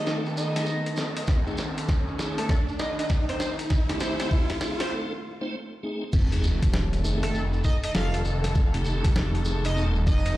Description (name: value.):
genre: glitch hop.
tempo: 99 BPM.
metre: 4/4.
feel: swing 63% on 16ths.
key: unclear.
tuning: A4 = 440 Hz.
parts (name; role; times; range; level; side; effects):
sync lead; melody; 0.0-10.4 s; A4 to F5; -33 LUFS; right 1 dB; chorus, tape echo.
muted studio string section; sustained chords; 0.0-10.4 s; Eb3 to A4; -34 LUFS; left 1 dB; vintage 12-bit sampler grit, sidechain pumping.
phased detuned saw bass; bass; 0.0-10.4 s; Eb1 to F2; -28 LUFS; equal; phaser, overdrive, high-pass filter.
riser and sub drop; sound effects; 0.0-8.6 s; none; -33 LUFS; equal; none.
tonewheel organ; stabs; 0.1-10.4 s; A3 to C5; -34 LUFS; equal; overdrive, chorus vibrato, slow rotary speaker, sidechain pumping, tape echo.
boom bap sampler-style drum kit; drums; 0.1-10.3 s; crash cymbal, hi-hat, snare drum; -32 LUFS; equal; high-pass filter on snare, high-pass filter on hats, high-pass filter on toms, high-pass filter on cymbals.
shekere; percussion; 0.1-10.4 s; none; -40 LUFS; right 1 dB; none.
electronic kick drum; drums; 1.3-10.2 s; none; -22 LUFS; equal; none.
room: light reverb.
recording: played on a big sound system in a bare room, large studio reverb.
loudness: -23 LUFS.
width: side -16 dB against mid.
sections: 0.0-6.1 A section; 6.1-10.4 B section.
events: build-up 0.0-6.1; drum fill 0.0-4.9; riser 0.0-4.9; filter sweep on analog synth lead 0.0-6.1; break 4.9-6.1; drop 6.1-10.4; impact 6.1-8.6.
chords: 0.0 F7#9.